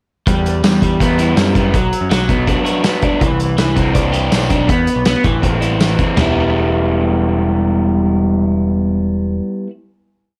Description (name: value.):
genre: indie rock.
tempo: 163 BPM.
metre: 4/4.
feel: straight.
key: E minor.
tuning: A4 = 440 Hz.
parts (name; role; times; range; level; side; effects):
crunchy overdriven guitar; riff; 0.3-9.7 s; E3 to G4; -18 LUFS; equal; none.
growling picked electric bass; bass; 0.3-9.4 s; E1 to F#2; -21 LUFS; equal; overdrive.
loose indie drum kit; drums; 0.3-6.3 s; hi-hat, kick drum, ride cymbal, snare drum, tambourine, toms; -20 LUFS; equal; cassette tape.
room: small room reverb.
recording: home recording on cassette.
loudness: -15 LUFS.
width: mono.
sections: 0.3-6.2 interlude; 6.2-9.1 final chord.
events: none.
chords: 0.3 Em; 1.7 Bm; 3.2 Cadd9; 4.7 E5; 5.2 Am; 6.2 Em.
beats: | 0.27 0.63 1.00 1.37 | 1.74 2.10 2.47 2.84 | 3.21 3.58 3.95 4.32 | 4.69 5.06 5.43 5.80 | 6.17 6.54 6.91 7.28 | 7.65 8.02 8.39 8.75.